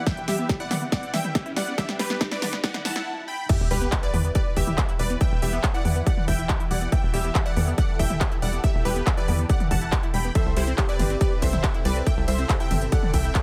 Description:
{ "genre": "uplifting trance", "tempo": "140 BPM", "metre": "4/4", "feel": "straight", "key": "E minor", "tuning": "A4 = 440 Hz", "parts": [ { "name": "supersaw stab", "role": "melody", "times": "0.0-13.4 s", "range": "E4 to B5", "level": "-33 LUFS", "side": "equal", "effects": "sidechain pumping, delay" }, { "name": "unison pluck", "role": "second line", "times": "0.0-13.4 s", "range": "B4 to B5", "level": "-40 LUFS", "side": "equal", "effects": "phaser, sidechain pumping, tape echo" }, { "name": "lush unison pad", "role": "sustained chords", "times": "0.0-13.4 s", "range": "C3 to B4", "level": "-39 LUFS", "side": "equal", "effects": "chorus, phaser, sidechain pumping" }, { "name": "tight sequencer bass", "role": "bass", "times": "0.0-13.3 s", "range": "E1 to E2", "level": "-28 LUFS", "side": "equal", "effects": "sidechain pumping, high-pass filter" }, { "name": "riser, swell and sub drop", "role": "sound effects", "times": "0.6-5.2 s", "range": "none", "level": "-38 LUFS", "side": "equal", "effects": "none" }, { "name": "tight sequenced synth", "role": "arpeggios", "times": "0.1-13.4 s", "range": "E3 to G4", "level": "-36 LUFS", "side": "equal", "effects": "chorus, phaser, sidechain pumping, tape echo" }, { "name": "big-room dance drum kit", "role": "drums", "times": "0.1-13.4 s", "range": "crash cymbal, handclaps, hi-hat, ride cymbal, snare drum, toms", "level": "-32 LUFS", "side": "equal", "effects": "overdrive, studio reverb" }, { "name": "electronic kick drum", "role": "drums", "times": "0.1-13.4 s", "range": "none", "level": "-26 LUFS", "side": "equal", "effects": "overdrive, studio reverb" }, { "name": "warm velvety synth lead", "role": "second line", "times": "10.4-13.4 s", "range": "G4 to A4", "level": "-35 LUFS", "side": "equal", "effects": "chorus, dub echo" } ], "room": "little or no reverb", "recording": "high-pass filter", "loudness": "-24 LUFS", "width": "mono", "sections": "0.0-3.5 A section; 3.5-13.4 B section", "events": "build-up 0.0-3.5; drum fill 0.0-3.1; filter sweep on synth arpeggio sound 0.0-3.5; filter sweep 0.0-3.5; swell 2.6-3.5; break 3.1-3.5; drop 3.5-13.4; impact 3.5-5.2", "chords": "0.0 Em; 10.4 C" }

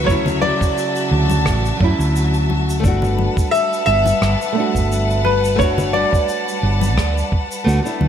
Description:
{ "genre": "sunset chillout", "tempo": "87 BPM", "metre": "4/4", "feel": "swing 54% on 16ths", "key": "unclear", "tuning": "A4 = 440 Hz", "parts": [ { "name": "clear baby grand piano", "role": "melody", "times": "0.0-7.3 s", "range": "B4 to E5", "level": "-20 LUFS", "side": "left 1 dB", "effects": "analog chorus, ping-pong delay" }, { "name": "nylon-string guitar", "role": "accompaniment", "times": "0.0-8.1 s", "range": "C#3 to F#4", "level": "-22 LUFS", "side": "moving between left 6 dB and right 7 dB", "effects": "auto-pan, ping-pong delay" }, { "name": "warm studio string section", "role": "sustained chords", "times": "0.0-8.1 s", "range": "G3 to A5", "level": "-24 LUFS", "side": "left 1 dB", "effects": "none" }, { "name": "hollow-body short-scale fingered electric bass", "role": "bass", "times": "0.0-8.1 s", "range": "G1 to F#2", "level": "-18 LUFS", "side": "right 1 dB", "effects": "none" }, { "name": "electronic kick drum", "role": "drums", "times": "0.1-7.5 s", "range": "none", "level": "-19 LUFS", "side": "equal", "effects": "none" }, { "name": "shaker and rim click", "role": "drums", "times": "0.1-8.0 s", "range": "none", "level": "-30 LUFS", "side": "equal", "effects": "gated reverb" }, { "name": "congas", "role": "percussion", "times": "0.3-8.1 s", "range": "none", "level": "-26 LUFS", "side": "left 4 dB", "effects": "none" } ], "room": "light reverb, small room ambience", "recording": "bright 1980s-style digital production", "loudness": "-15 LUFS", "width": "side -9 dB against mid", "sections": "0.0-8.1 A section", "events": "none", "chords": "0.0 Dmaj9; 2.8 Gmaj9" }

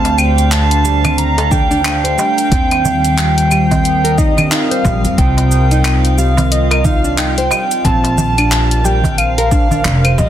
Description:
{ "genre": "organic downtempo", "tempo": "90 BPM", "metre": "4/4", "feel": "swing 59% on 16ths", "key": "C dorian", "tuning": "A4 = 436 Hz", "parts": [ { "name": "breathy flute-like synth lead", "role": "melody", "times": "0.0-10.3 s", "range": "Eb5 to Bb5", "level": "-17 LUFS", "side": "right 1 dB", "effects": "analog chorus, tape echo" }, { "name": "warm analog pad", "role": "sustained chords", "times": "0.0-10.3 s", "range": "G3 to Eb6", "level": "-21 LUFS", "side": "equal", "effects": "chorus, sidechain pumping" }, { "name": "nylon-string guitar", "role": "arpeggios", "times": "0.0-10.3 s", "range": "G3 to C5", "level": "-20 LUFS", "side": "right 1 dB", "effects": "digital delay" }, { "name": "upright bass", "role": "bass", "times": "0.0-10.3 s", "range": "F1 to F2", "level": "-15 LUFS", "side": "equal", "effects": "sidechain pumping" }, { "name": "darbuka", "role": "percussion", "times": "0.0-10.3 s", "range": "none", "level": "-22 LUFS", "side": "right 4 dB", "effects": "none" }, { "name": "drifting glass-harmonics texture", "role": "texture", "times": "0.0-10.3 s", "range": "F5", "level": "-27 LUFS", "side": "right 3 dB", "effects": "chorus, built-in reverb" }, { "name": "deep house drum kit", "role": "drums", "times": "0.1-10.3 s", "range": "claves, handclaps, hi-hat, shaker", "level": "-18 LUFS", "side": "left 1 dB", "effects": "overdrive" }, { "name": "electronic kick drum", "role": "drums", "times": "1.5-10.3 s", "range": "none", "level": "-16 LUFS", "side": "equal", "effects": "overdrive" } ], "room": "light reverb, digital ambience", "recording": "dense, heavily limited modern master", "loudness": "-11 LUFS", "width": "side -11 dB against mid", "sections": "0.0-10.3 A section", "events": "none", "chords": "0.0 Dm7; 2.5 Ebadd9; 5.2 Cm; 7.8 Bbmaj7" }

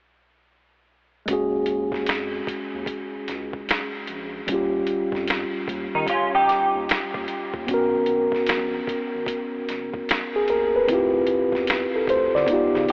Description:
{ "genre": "R&B, neo-soul", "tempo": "75 BPM", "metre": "4/4", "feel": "swing 63% on 16ths", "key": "unclear", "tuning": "A4 = 440 Hz", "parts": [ { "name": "mellow tine electric piano", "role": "accompaniment", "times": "1.3-12.9 s", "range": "G3 to D5", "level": "-22 LUFS", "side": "equal", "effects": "none" }, { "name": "round analog bass", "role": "bass", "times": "1.3-12.9 s", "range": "Gb1 to Eb3", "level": "-37 LUFS", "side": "equal", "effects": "none" }, { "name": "boom bap sampler-style drum kit", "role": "drums", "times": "1.3-12.9 s", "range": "finger snaps, hi-hat, kick drum, snare drum", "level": "-28 LUFS", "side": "equal", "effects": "none" }, { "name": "semi-hollow electric guitar", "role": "second line", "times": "5.9-7.5, 12.9 s", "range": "Db4 to G4", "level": "-23 LUFS", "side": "right 1 dB", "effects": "ensemble chorus" } ], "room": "moderate huge ambient reverb, RT60 8.8 s", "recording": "dreamy mix soaked in reverb, telephone sound", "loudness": "-21 LUFS", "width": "side -33 dB against mid", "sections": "1.3-12.9 A section", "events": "none", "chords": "1.3 Ebm11; 4.5 Eb7; 7.7 Abm9; 10.9 Dm9" }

